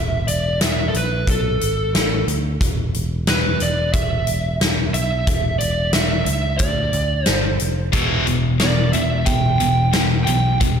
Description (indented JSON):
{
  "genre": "hard rock",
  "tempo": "90 BPM",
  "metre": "4/4",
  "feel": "straight",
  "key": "E minor",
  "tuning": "A4 = 440 Hz",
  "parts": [
    { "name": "lead guitar through a small cranked amp", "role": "melody", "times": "0.0-10.6 s", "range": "A4 to G5", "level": "-23 LUFS", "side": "right 2 dB", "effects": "overdrive, slapback echo, analog delay" },
    { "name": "picked electric bass", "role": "bass", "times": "0.0-10.8 s", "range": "E1 to D2", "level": "-22 LUFS", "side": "equal", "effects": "none" },
    { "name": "big rock drum kit", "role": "drums", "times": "0.3-10.8 s", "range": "hi-hat, kick drum, snare drum", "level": "-21 LUFS", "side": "equal", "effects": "none" },
    { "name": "distorted electric guitar", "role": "riff", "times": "7.9-10.8 s", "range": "E2 to E3", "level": "-24 LUFS", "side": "right 7 dB", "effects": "overdrive" },
    { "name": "heavy high-gain guitar", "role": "riff", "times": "7.9-10.8 s", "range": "E2 to E3", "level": "-21 LUFS", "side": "left 7 dB", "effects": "distortion" }
  ],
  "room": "moderate lush hall reverb, RT60 1.7 s, small room ambience",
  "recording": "big arena sound",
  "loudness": "-16 LUFS",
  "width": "side -7 dB against mid",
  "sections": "0.0-10.8 A section",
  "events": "none",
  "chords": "0.0 E5; 1.3 G#m; 1.9 Asus4; 2.6 E5; 6.6 N.C.; 7.3 G5; 7.9 Em"
}